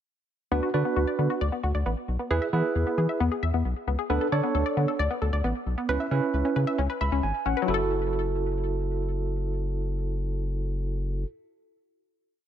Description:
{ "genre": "synth-pop", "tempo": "134 BPM", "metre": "4/4", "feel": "straight", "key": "F# minor", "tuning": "A4 = 440 Hz", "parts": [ { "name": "tine electric piano", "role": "accompaniment", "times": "0.5-11.3 s", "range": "C#4 to B5", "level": "-29 LUFS", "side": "right 6 dB", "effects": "medium tremolo" }, { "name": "wide unison pluck", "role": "arpeggios", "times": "0.5-11.3 s", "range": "F#3 to E5", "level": "-30 LUFS", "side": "moving between left 12 dB and right 1 dB", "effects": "auto-pan, tape echo" }, { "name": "rubbery square bass", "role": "bass", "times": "0.5-11.2 s", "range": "F#1 to E3", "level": "-27 LUFS", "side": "left 1 dB", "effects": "none" } ], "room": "light reverb, digital ambience", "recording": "none", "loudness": "-24 LUFS", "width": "side -10 dB against mid", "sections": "0.5-7.7 pre-chorus; 7.7-11.3 final chord", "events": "tine electric piano fill 6.8-7.7", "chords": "0.5 D6; 2.3 E; 4.1 Bm7/D; 5.9 C#m7; 7.7 F#m7", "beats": "| 0.52 0.96 1.41 1.86 | 2.31 2.75 3.20 3.65 | 4.10 4.55 4.99 5.44 | 5.89 6.34 6.79 7.23 | 7.68 8.13 8.58 9.02 | 9.47 9.92 10.37 10.81" }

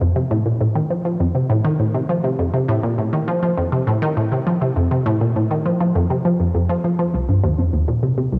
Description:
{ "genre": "ambient", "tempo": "101 BPM", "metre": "4/4", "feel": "straight", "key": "unclear", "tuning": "A4 = 440 Hz", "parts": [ { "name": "resonant blip pluck", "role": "solo", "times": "0.0-8.4 s", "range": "C2 to F3", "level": "-19 LUFS", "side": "equal", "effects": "chorus, cassette tape, analog delay" } ], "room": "wet lush hall reverb, RT60 2.9 s", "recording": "home recording on cassette", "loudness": "-19 LUFS", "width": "mono", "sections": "0.0-7.1 A section; 7.1-8.4 B section", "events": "none", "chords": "none", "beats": "| 0.01 0.61 1.20 1.79 | 2.39 2.98 3.58 4.17 | 4.76 5.36 5.95 6.55 | 7.14 7.74 8.33" }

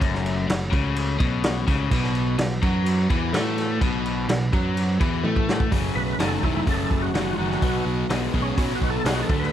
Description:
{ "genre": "classic rock", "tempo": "126 BPM", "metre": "4/4", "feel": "straight", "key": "unclear", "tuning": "A4 = 440 Hz", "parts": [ { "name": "tonewheel organ", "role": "sustained chords", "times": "0.0-9.5 s", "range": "A3 to D#5", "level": "-37 LUFS", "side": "right 2 dB", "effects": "none" }, { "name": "overdriven electric guitar", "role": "riff", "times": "0.0-9.5 s", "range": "F#2 to A3", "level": "-27 LUFS", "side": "left 9 dB", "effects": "none" }, { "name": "picked electric bass", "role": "bass", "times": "0.0-9.5 s", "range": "E1 to A2", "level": "-27 LUFS", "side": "equal", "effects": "none" }, { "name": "vintage drum kit", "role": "drums", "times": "0.0-9.5 s", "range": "crash cymbal, hi-hat, kick drum, snare drum, toms", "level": "-25 LUFS", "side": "equal", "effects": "none" }, { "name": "sludgy distorted guitar", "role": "riff", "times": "1.9-9.5 s", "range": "F#2 to A3", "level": "-28 LUFS", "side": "right 10 dB", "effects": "overdrive" }, { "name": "picked steel-string acoustic guitar", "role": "accompaniment", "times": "5.7-9.5 s", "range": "F#2 to G#4", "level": "-34 LUFS", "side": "left 8 dB", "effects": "none" }, { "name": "overdriven tonewheel organ", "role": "melody", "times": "6.0-9.5 s", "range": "C#4 to B4", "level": "-29 LUFS", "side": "right 1 dB", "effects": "slow rotary speaker, chorus vibrato" } ], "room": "light reverb", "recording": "none", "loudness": "-20 LUFS", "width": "side -10 dB against mid", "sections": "0.0-5.7 A section; 5.7-9.5 B section", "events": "drum fill 5.2-5.7; tonewheel organ solo 5.7-9.5", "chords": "0.0 F#m; 1.9 B5; 5.7 F#madd9; 7.6 B", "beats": "| 0.01 0.49 0.96 1.44 | 1.92 2.39 2.87 3.34 | 3.82 4.29 4.77 5.25 | 5.72 6.20 6.67 7.15 | 7.63 8.11 8.58 9.06" }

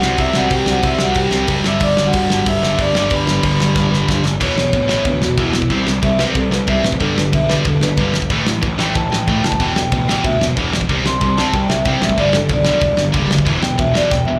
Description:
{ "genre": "punk rock", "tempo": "185 BPM", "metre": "4/4", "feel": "straight", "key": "unclear", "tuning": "A4 = 440 Hz", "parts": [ { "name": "vibraphone with medium hard mallets", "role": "melody", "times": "0.0-14.4 s", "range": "E4 to E6", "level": "-22 LUFS", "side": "equal", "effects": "none" }, { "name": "sludgy distorted guitar", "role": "riff", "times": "0.0-14.4 s", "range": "E2 to C4", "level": "-24 LUFS", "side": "equal", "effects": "overdrive, slapback echo" }, { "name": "tight distorted guitar", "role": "riff", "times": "0.0-14.4 s", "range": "E2 to C4", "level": "-23 LUFS", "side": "equal", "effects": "distortion" }, { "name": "fuzz picked electric bass", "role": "bass", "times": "0.0-14.4 s", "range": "E1 to D2", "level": "-23 LUFS", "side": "equal", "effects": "overdrive" }, { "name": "loose indie drum kit", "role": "drums", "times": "0.0-14.2 s", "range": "crash cymbal, hi-hat, kick drum, snare drum", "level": "-23 LUFS", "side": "equal", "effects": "none" } ], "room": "little or no reverb", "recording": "live gig heard through the venue's PA, club reverb", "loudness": "-16 LUFS", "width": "mono", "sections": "0.0-4.4 A section; 4.4-14.4 B section", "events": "drum fill 3.8-4.4, 14.1; vibraphone solo 4.4-14.4", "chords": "0.0 C; 1.6 G; 4.4 E5; 5.7 C5; 7.0 G; 8.3 A5; 9.6 E5; 10.9 C5; 12.2 G; 13.5 E5", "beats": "0.18 | 0.51 0.83 1.16 1.48 | 1.81 2.13 2.46 2.78 | 3.11 3.44 3.76 4.08 | 4.41 4.73 5.06 5.38 | 5.71 6.03 6.36 6.68 | 7.01 7.33 7.65 7.98 | 8.30 8.63 8.95 9.27 | 9.60 9.92 10.24 10.56 | 10.89 11.21 11.53 11.86 | 12.18 12.50 12.82 13.14 | 13.47 13.79 14.11" }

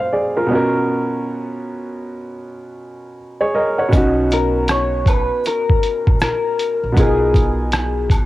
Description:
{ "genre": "lo-fi hip hop", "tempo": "79 BPM", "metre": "4/4", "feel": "swing 63% on 16ths", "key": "B major", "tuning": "A4 = 438 Hz", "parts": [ { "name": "warm upright piano", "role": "accompaniment", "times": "0.0-8.3 s", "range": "B2 to F#5", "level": "-20 LUFS", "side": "right 1 dB", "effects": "cassette tape, low-pass filter" }, { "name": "upright bass", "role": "bass", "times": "3.9-8.3 s", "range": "A#1 to B1", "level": "-23 LUFS", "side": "equal", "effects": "none" }, { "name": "lo-fi sampler-style drum kit", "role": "drums", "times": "3.9-8.3 s", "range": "hi-hat, kick drum, rim click", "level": "-16 LUFS", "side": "equal", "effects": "vintage 12-bit sampler grit" }, { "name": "egg shaker and woodblock", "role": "percussion", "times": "3.9-8.3 s", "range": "none", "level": "-32 LUFS", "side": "left 1 dB", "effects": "none" }, { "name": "electric guitar through a small old amp", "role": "melody", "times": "4.3-8.1 s", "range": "G#4 to C#5", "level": "-19 LUFS", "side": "left 3 dB", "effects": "analog chorus, low-pass filter, cassette tape" } ], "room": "light reverb, studio ambience", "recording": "home recording on cassette", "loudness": "-15 LUFS", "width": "side -16 dB against mid", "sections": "0.0-3.9 A section; 3.9-8.3 B section", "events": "none", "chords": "0.0 A#7b9b13/B; 0.5 Bmaj7sus2; 3.9 Bmaj7; 7.0 C#13/B (rootless)", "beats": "0.13 | 0.89 1.65 2.41 3.17 | 3.93 4.69 5.45 6.21 | 6.96 7.72" }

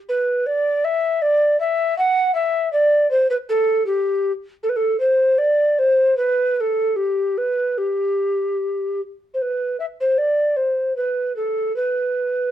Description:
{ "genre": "classical, baroque-style fantasia for unaccompanied recorder", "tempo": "72-81 BPM", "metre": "3/4", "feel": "rubato", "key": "G major", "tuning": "A4 = 440 Hz", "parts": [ { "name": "mellow hollow tenor recorder", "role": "solo", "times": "0.1-12.5 s", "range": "G4 to F#5", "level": "-17 LUFS", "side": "equal", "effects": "none" } ], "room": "moderate studio reverb, RT60 0.7 s", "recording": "dark, warm production", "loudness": "-17 LUFS", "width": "side -11 dB against mid", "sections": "0.0-9.4 A section; 9.4-12.5 A section", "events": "none", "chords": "none", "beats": "| 0.10 0.85 1.60 | 2.35 3.10 3.87 | 4.63 5.39 6.18 | 6.98 7.79 8.60 | 9.42 10.20 10.97 | 11.75" }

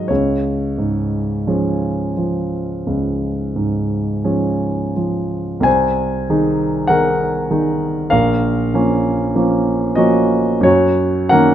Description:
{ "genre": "classical, romantic nocturne for solo piano", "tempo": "41-50 BPM", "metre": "4/4", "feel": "rubato", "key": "Db major", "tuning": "A4 = 440 Hz", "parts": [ { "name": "warm grand piano", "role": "solo", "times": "0.0-11.5 s", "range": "Bb1 to Ab5", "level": "-15 LUFS", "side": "equal", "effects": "none" } ], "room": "light reverb", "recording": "close, detailed microphones", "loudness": "-15 LUFS", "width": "side -10 dB against mid", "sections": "0.0-5.7 A section; 5.7-11.5 B section", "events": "none", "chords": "0.1 Db; 5.7 Ab/C; 8.1 Bbm; 10.6 Ebm7/Gb", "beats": "| 0.09 1.47 2.86 4.25 | 5.66 6.90 8.12 9.35 | 10.64" }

